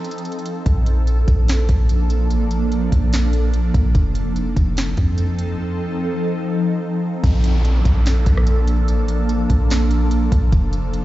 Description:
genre	hip hop, atmospheric cloud-rap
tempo	146 BPM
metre	4/4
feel	half-time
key	Bb major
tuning	A4 = 440 Hz
part	ethereal airy pad	sustained chords	0.0-11.0 s	F3 to A4	-22 LUFS	equal	ensemble chorus, built-in reverb, phaser, sidechain pumping
part	smooth R&B drum kit	drums	0.0-11.0 s	hi-hat, kick drum, rim click, snare drum	-20 LUFS	equal	none
part	soft 808-style bass	bass	0.7-11.0 s	F1 to F2	-17 LUFS	equal	none
part	downlifter	sound effects	7.2-10.5 s	none	-32 LUFS	equal	none
room	digital ambience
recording	played on a big sound system in a bare room, large studio reverb, nothing above 7.8 kHz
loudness	-16 LUFS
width	side -15 dB against mid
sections	0.0-7.2 A section; 7.2-11.0 B section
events	break 0.0-0.7, 5.6-7.2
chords	0.0 F7; 0.7 Bbmaj7; 3.9 F7; 7.2 Bbmaj7; 10.5 F7

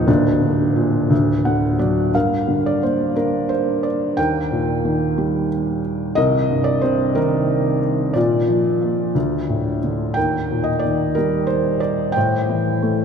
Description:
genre	classical, lyrical solo piano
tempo	60 BPM (dotted quarters)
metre	6/8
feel	rubato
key	G minor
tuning	A4 = 440 Hz
part	felt-muted upright piano	solo	0.0-13.0 s	D1 to G5	-17 LUFS	equal	none
room	wet cathedral reverb, RT60 5.6 s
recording	in a vast, echoing space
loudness	-17 LUFS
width	side -6 dB against mid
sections	0.0-2.1 A section; 2.1-13.0 B section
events	felt piano fill 1.1-2.1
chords	0.1 Bb/D; 1.1 D; 2.1 Gm; 4.2 Eb; 6.2 Cm7; 8.2 Bb; 9.2 D5; 10.2 Eb; 12.2 Am

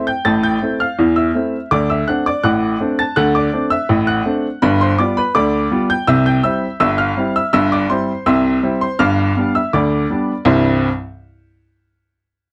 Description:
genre	ragtime piano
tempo	82 BPM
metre	2/4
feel	straight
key	C major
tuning	A4 = 440 Hz
part	clear upright piano	solo	0.0-10.9 s	G1 to A6	-16 LUFS	equal	none
room	light reverb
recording	dark, warm production, nothing above 10.4 kHz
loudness	-16 LUFS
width	mono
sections	0.0-10.5 A section; 10.5-11.9 B section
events	none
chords	0.0 Am; 1.7 D7; 4.6 G7; 6.1 C; 7.5 C/G; 9.0 G7; 10.5 C

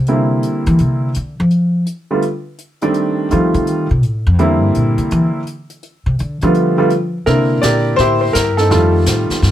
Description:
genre	jazz piano trio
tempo	167 BPM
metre	4/4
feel	swing 64% on 8ths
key	C mixolydian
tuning	A4 = 439 Hz
part	upright bass	bass	0.0-9.5 s	E2 to F3	-15 LUFS	equal	none
part	warm concert grand piano	melody	0.1-9.5 s	D3 to D5	-15 LUFS	right 1 dB	none
part	jazz brush drum kit	drums	0.1-9.5 s	brushed snare drum, hi-hat, snare drum	-25 LUFS	equal	none
room	light reverb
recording	none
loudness	-13 LUFS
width	side -12 dB against mid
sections	0.0-7.3 A section; 7.3-9.5 B section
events	upright bass solo 0.0-7.3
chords	0.0 C9; 1.5 N.C.; 2.9 F9; 4.4 C9; 5.8 G9; 7.3 C9; 8.7 F9

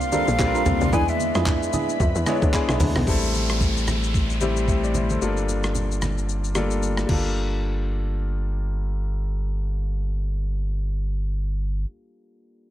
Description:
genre	amapiano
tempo	112 BPM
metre	4/4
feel	swing 58% on 16ths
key	G dorian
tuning	A4 = 441 Hz
part	breathy mellow jazz flute	melody	0.0-2.8 s	E5 to G#5	-26 LUFS	right 1 dB	tape echo
part	clear concert grand piano	accompaniment	0.0-12.7 s	G3 to E5	-27 LUFS	left 4 dB	low-pass filter
part	ethereal airy pad	sustained chords	0.0-3.0 s	Bb3 to C6	-32 LUFS	left 1 dB	ensemble chorus, built-in reverb, phaser, sidechain pumping
part	tight log drum bass	bass	0.0-3.1 s	Bb1 to F2	-24 LUFS	equal	none
part	boom bap sampler-style drum kit	drums	0.0-7.2 s	crash cymbal, handclaps, hi-hat, kick drum, rim click, shaker, toms	-26 LUFS	equal	none
part	percussive organ stab	stabs	0.1-2.4 s	D4 to Bb4	-29 LUFS	right 6 dB	chorus, tape echo
part	congas	percussion	0.1-7.6 s	none	-32 LUFS	right 2 dB	none
part	warm sub bass	bass	3.1-11.8 s	G1 to A1	-25 LUFS	equal	none
part	downlifter	sound effects	3.1-7.4 s	none	-32 LUFS	equal	none
room	little or no reverb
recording	none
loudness	-21 LUFS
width	side -13 dB against mid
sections	0.0-3.1 A section; 3.1-7.4 B section; 7.4-11.6 C section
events	drop 0.0-3.1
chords	0.0 C9sus4; 0.9 E7; 3.1 Am7; 5.2 Gm9

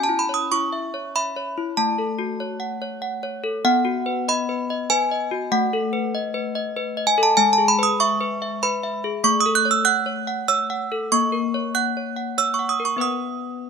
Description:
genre	classical, lullaby for handbells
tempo	96 BPM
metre	3/4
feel	straight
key	unclear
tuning	A4 = 442 Hz
part	desk bells	solo	0.0-13.7 s	G#3 to F#6	-19 LUFS	equal	none
room	light reverb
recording	minimal, uncompressed stereo recording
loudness	-19 LUFS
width	side -6 dB against mid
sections	0.0-13.7 A section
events	none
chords	0.0 C#m; 1.8 F#m/A; 3.6 B; 5.5 B7/A; 7.4 E/G#; 9.2 F#m/A; 11.1 F#/A#; 13.0 B

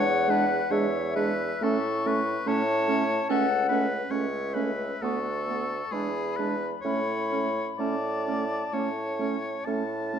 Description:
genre	classical, slow romantic movement for wind quintet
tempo	62-75 BPM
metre	4/4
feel	rubato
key	A major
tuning	A4 = 440 Hz
part	baroque flute	melody	0.0-9.7 s	E5 to C#6	-30 LUFS	left 6 dB	none
part	clear oboe	second line	0.0-10.2 s	G#4 to A5	-31 LUFS	left 2 dB	none
part	mellow French horn	accompaniment	0.0-10.2 s	G#3 to A3	-33 LUFS	equal	none
part	mellow clarinet	accompaniment	0.0-10.2 s	B3 to D4	-32 LUFS	right 9 dB	none
part	warm bassoon	bass	0.0-10.2 s	C#2 to A2	-30 LUFS	right 2 dB	none
room	wet recital hall reverb, RT60 1.3 s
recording	dark, warm production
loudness	-25 LUFS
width	side -8 dB against mid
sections	0.0-10.2 A section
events	none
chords	0.0 E7; 1.6 A; 3.3 A/C#; 5.0 Bm7/D; 5.9 E7; 6.9 A

